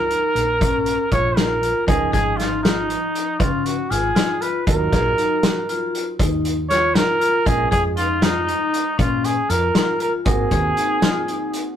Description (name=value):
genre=progressive instrumental, band music in an uneven meter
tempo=236 BPM (eighths)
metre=11/8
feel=straight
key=unclear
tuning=A4 = 440 Hz
part: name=warm trumpet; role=melody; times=0.0-11.8 s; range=Eb4 to Db5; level=-21 LUFS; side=right 1 dB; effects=none
part: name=vibraphone with hard mallets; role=arpeggios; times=0.0-11.6 s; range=Db4 to Bb4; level=-25 LUFS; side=left 5 dB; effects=none
part: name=woody fretless electric bass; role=bass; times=0.0-10.7 s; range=Ab1 to Db3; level=-26 LUFS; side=equal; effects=none
part: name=vintage drum kit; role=drums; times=0.1-11.7 s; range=hi-hat, kick drum, snare drum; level=-21 LUFS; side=equal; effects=none
part: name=warm concert grand piano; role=accompaniment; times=1.9-11.8 s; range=F3 to Gb4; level=-31 LUFS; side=right 5 dB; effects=none
room=moderate small room reverb, RT60 0.5 s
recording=rough rehearsal-room recording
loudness=-17 LUFS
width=side -9 dB against mid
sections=0.0-1.9 A section; 1.9-11.8 B section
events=none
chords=0.0 Bbm; 1.9 Dbadd9; 4.7 Ebmadd9; 7.5 Bbm7; 10.3 Ab7